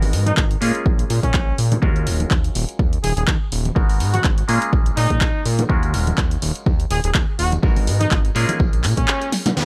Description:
filtered disco house; 124 BPM; 4/4; swing 55% on 16ths; Eb minor; A4 = 435 Hz
bright clav; accompaniment; 0.0-9.7 s; Gb3 to Bb4; -30 LUFS; equal; phaser, sidechain pumping, low-pass filter
fat analog bass; bass; 0.0-9.7 s; Eb1 to Bb2; -23 LUFS; equal; sidechain pumping, low-pass filter
punchy analog drum machine; drums; 0.0-9.5 s; handclaps, hi-hat, snare drum; -27 LUFS; equal; overdrive, sidechain pumping on hats
congas and tambourine; percussion; 0.0-9.5 s; -31 LUFS; equal; sidechain pumping on perc, low-pass filter on perc
bright trumpet section; melody; 0.3-9.3 s; Db4 to Ab4; -28 LUFS; equal; vintage 12-bit sampler grit, sidechain pumping, low-pass filter, tape echo
electronic kick drum; drums; 0.4-9.1 s; -22 LUFS; equal; overdrive
downlifter; sound effects; 9.6-9.7 s; -22 LUFS; equal
little or no reverb; -19 LUFS; mono
0.0-9.6 A section
filter sweep 0.0-9.6; band accent 9.1; drum fill 9.3
0.0 Abm9; 0.6 Bbm7; 1.8 Ebm11; 3.8 Abm9; 4.5 Bbm7; 5.7 Ebm11; 7.6 Abm9; 8.4 Bbm7
0.37 0.86 1.34 | 1.83 2.31 2.79 3.28 | 3.76 4.25 4.73 5.21 | 5.70 6.18 6.66 7.15 | 7.63 8.12 8.60 9.08 | 9.57

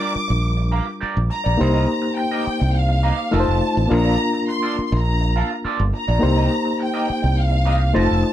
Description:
soul; 104 BPM; 4/4; straight; C dorian; A4 = 440 Hz
warm studio violin section; melody; 0.0-8.3 s; F5 to D6; -25 LUFS; equal
barky reed electric piano; accompaniment; 0.0-8.3 s; G3 to C5; -22 LUFS; left 2 dB; overdrive, fast tremolo
electric guitar through a small old amp; riff; 0.0-8.3 s; F4 to F5; -28 LUFS; right 5 dB; wah
modern bright fingered electric bass; bass; 0.2-8.2 s; F1 to C2; -18 LUFS; equal
little or no reverb; dry, close 1970s-style studio recording; -17 LUFS; side -12 dB against mid
0.0-1.6 A section; 1.6-8.3 B section
0.0 Bb6; 1.6 Cm7; 3.3 F7; 3.9 Bbmaj7; 6.2 Cm7
0.43 1.01 | 1.59 2.17 2.75 3.32 | 3.90 4.48 5.06 5.63 | 6.21 6.79 7.37 7.94

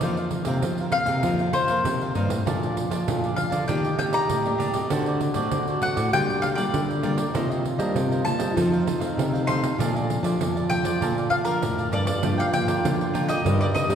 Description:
samba and choro; 98 BPM; 4/4; straight; Bb major; A4 = 441 Hz
cavaquinho; accompaniment; 0.0-13.9 s; D4 to A5; -32 LUFS; right 2 dB
nylon-string guitar; accompaniment; 0.0-13.9 s; F2 to Bb4; -31 LUFS; left 2 dB
nylon-string guitar; bass; 0.0-13.9 s; G2 to G3; -26 LUFS; equal
pandeiro; percussion; 0.0-13.9 s; -29 LUFS; right 2 dB
mandolin; melody; 0.9-13.9 s; Bb4 to C6; -27 LUFS; left 3 dB
breathy trombone; second line; 2.5-13.9 s; D4 to G4; -30 LUFS; right 3 dB
wet church reverb, RT60 2.7 s; recorded in a church or concert hall; -21 LUFS; side -8 dB against mid
0.0-12.2 A section; 12.2-13.9 B section
0.0 F7sus4; 2.5 Bbmaj7; 3.7 Ebmaj7; 4.9 D7; 6.1 Gm7/D; 7.3 Cm9; 8.6 F7; 9.8 Bbmaj7; 12.2 Gm7; 13.4 Cm7/G
| 0.02 0.63 1.24 1.85 | 2.46 3.07 3.68 4.29 | 4.90 5.51 6.12 6.73 | 7.34 7.96 8.56 9.18 | 9.79 10.40 11.01 11.62 | 12.23 12.84 13.45

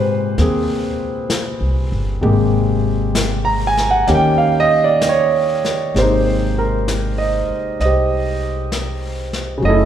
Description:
jazz ballad; 65 BPM; 4/4; swing 67% on 8ths; Ab major; A4 = 440 Hz
warm concert grand piano; accompaniment; 0.0-9.9 s; Bb2 to Bb5; -16 LUFS; right 2 dB
upright bass; bass; 0.0-9.9 s; Gb1 to Ab2; -20 LUFS; left 1 dB
vintage brush drum kit; drums; 0.4-9.9 s; brushed snare drum, hi-hat, snare drum; -26 LUFS; left 3 dB
moderate concert hall reverb, RT60 2.3 s; recorded in a church or concert hall; -15 LUFS; side -10 dB against mid
0.0-5.9 A section; 5.9-9.9 B section
0.0 Abmaj9; 4.1 Eb7; 5.9 Abmaj9
0.39 1.30 | 2.22 3.14 4.07 5.00 | 5.94 6.86 7.79 8.71 | 9.62

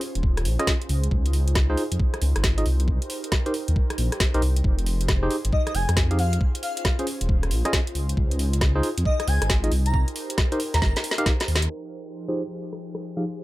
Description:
UK garage, two-step garage; 136 BPM; 4/4; swing 64% on 16ths; F minor; A4 = 439 Hz
airy breathy pad; sustained chords; 0.0-13.4 s; F3 to C5; -35 LUFS; right 1 dB; chorus, vintage 12-bit sampler grit, sidechain pumping
garage drum kit; drums; 0.0-13.4 s; hi-hat, rim click, snare drum; -28 LUFS; equal; low-pass filter on hats, low-pass filter on snare, low-pass filter on room
dark detuned saw bass; bass; 0.2-11.7 s; Eb1 to F2; -22 LUFS; equal
electronic kick drum; drums; 0.2-11.4 s; -23 LUFS; equal
barky tine electric piano; stabs; 0.6-13.2 s; F3 to F5; -28 LUFS; equal; dub echo
airy dreamy lead; melody; 5.5-10.9 s; Eb5 to Bb5; -30 LUFS; left 1 dB; chorus, dub echo
little or no reverb; low-pass filter; -21 LUFS; side -17 dB against mid
0.0-11.7 A section; 11.7-13.4 B section
drum fill 10.8-11.7; band accent 11.6; filter sweep 11.7-13.4
0.0 Eb13sus4; 0.9 Dbmaj9; 2.7 Cm7; 4.6 Fm9; 6.4 Eb13sus4; 8.0 Dbmaj9; 9.7 Cm7; 11.7 Fm9
0.23 0.67 | 1.11 1.55 2.00 2.44 | 2.88 3.32 3.76 4.20 | 4.64 5.08 5.53 5.97 | 6.41 6.85 7.29 7.73 | 8.17 8.61 9.05 9.50 | 9.94 10.38 10.82 11.26 | 11.70 12.14 12.59 13.03

